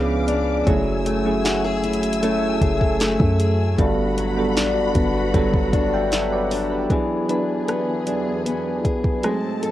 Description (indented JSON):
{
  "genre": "contemporary R&B",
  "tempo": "77 BPM",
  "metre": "4/4",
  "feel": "straight",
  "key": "unclear",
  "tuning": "A4 = 440 Hz",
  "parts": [
    { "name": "soft electric-piano-like synth keys", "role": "accompaniment", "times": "0.0-9.7 s", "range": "E#3 to G5", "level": "-23 LUFS", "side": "right 3 dB", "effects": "chorus, tremolo" },
    { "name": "warm studio string section", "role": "sustained chords", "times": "0.0-9.7 s", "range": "E2 to E6", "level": "-30 LUFS", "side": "equal", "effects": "none" },
    { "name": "fingerpicked steel-string acoustic guitar", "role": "arpeggios", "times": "0.0-9.7 s", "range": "G2 to A4", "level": "-24 LUFS", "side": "left 5 dB", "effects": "none" },
    { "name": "warm 808-style bass", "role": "bass", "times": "0.0-6.9 s", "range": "F#1 to F#2", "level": "-25 LUFS", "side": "equal", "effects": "none" },
    { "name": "smooth R&B drum kit", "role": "drums", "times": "0.3-9.7 s", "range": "hi-hat, kick drum, rim click, snare drum", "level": "-22 LUFS", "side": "equal", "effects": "none" }
  ],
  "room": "light reverb",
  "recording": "home recording on cassette, lossy compression artefacts",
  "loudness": "-18 LUFS",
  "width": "side -14 dB against mid",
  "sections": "0.0-6.9 A section; 6.9-9.7 B section",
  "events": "none",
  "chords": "0.0 C#7b9; 0.7 F#m9; 3.8 Gmaj7; 6.9 E7"
}